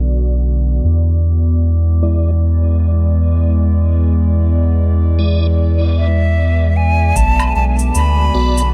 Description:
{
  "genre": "ambient dub",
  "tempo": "76 BPM",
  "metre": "4/4",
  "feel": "swing 60% on 16ths",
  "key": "unclear",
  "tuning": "A4 = 440 Hz",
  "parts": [
    { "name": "warbly tape-like pad", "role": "sustained chords", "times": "0.0-8.7 s", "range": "D3 to D5", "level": "-25 LUFS", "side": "equal", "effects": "chorus, built-in reverb, phaser" },
    { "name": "soft dub sub bass", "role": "bass", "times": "0.0-8.7 s", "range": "B1 to E2", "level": "-15 LUFS", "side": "equal", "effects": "tube saturation" },
    { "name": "tonewheel organ", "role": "stabs", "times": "2.0-8.6 s", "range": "G#3 to D5", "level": "-29 LUFS", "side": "equal", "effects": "overdrive, chorus vibrato, dub echo" },
    { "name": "bright silver concert flute", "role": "melody", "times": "6.0-8.7 s", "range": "E5 to B5", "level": "-21 LUFS", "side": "equal", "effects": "dub echo" },
    { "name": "cabasa and woodblock", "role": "drums", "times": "7.2-8.7 s", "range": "none", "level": "-27 LUFS", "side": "equal", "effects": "dub echo" },
    { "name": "electronic kick drum", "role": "drums", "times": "7.2-7.3 s", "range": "none", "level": "-22 LUFS", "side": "equal", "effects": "none" }
  ],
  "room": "digital ambience",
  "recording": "low-pass filter",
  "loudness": "-14 LUFS",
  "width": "mono",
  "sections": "0.0-7.2 A section; 7.2-8.7 B section",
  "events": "filter sweep 0.0-7.2",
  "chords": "0.0 Bm; 0.8 E7; 7.2 Bm",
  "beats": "0.06 | 0.84 1.63 2.42 3.21 | 4.00 4.79 5.58 6.37 | 7.16 7.95"
}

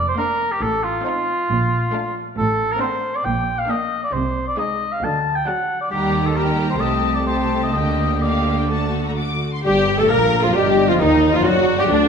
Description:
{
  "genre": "classical",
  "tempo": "134 BPM",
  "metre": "4/4",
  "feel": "rubato",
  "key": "G minor",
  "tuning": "A4 = 438 Hz",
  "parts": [
    { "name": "warm oboe", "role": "second line", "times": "0.0-12.1 s", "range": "D4 to A5", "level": "-22 LUFS", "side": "equal", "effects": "none" },
    { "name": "rich symphonic cello section", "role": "bass", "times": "0.0-12.1 s", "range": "D2 to Eb3", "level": "-25 LUFS", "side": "right 3 dB", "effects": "none" },
    { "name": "rich symphonic double bass section", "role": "bass", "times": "0.0-12.1 s", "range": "F#1 to Eb2", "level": "-25 LUFS", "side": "right 2 dB", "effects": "none" },
    { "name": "rich symphonic violin section", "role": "melody", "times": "0.2-12.1 s", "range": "D4 to D6", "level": "-30 LUFS", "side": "left 5 dB", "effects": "none" },
    { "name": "warm symphonic violin section", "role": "second line", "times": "0.2-12.1 s", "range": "D4 to Bb4", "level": "-27 LUFS", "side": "left 3 dB", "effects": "none" },
    { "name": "clear symphonic viola section", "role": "accompaniment", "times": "0.2-12.1 s", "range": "F#3 to Bb4", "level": "-22 LUFS", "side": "equal", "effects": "none" },
    { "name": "bright clarinet", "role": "second line", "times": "9.7-12.1 s", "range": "D4 to Bb4", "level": "-24 LUFS", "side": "left 2 dB", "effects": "none" },
    { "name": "mellow bassoon", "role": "accompaniment", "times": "9.7-12.1 s", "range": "D3 to Bb3", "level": "-24 LUFS", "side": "right 1 dB", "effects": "none" },
    { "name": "dark French horn section", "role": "sustained chords", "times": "9.7-12.1 s", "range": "D3 to Bb3", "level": "-23 LUFS", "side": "left 5 dB", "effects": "none" },
    { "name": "mellow concert flute", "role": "second line", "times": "10.6-12.1 s", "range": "D5 to Eb5", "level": "-25 LUFS", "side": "right 1 dB", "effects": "none" }
  ],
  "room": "wet scoring stage reverb, RT60 1.5 s",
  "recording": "none",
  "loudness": "-17 LUFS",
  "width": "side -6 dB against mid",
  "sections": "0.0-9.7 A section; 9.7-12.1 B section",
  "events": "none",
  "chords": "0.0 Bb; 0.6 F7/A; 1.5 Bbmaj7; 2.4 D7/A; 3.3 Gm/Bb; 4.1 Ab/C; 5.0 D; 5.9 Eb; 6.8 Cm6; 7.7 Gm/D; 8.7 D; 9.7 Gm; 10.6 Eb/G; 11.5 D/F#",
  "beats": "0.18 | 0.61 1.05 1.50 1.94 | 2.37 2.81 3.25 3.69 | 4.13 4.58 5.02 5.47 | 5.92 6.36 6.80 7.27 | 7.75 8.23 8.71 9.18 | 9.65 10.11 10.55 11.00 | 11.45 11.90"
}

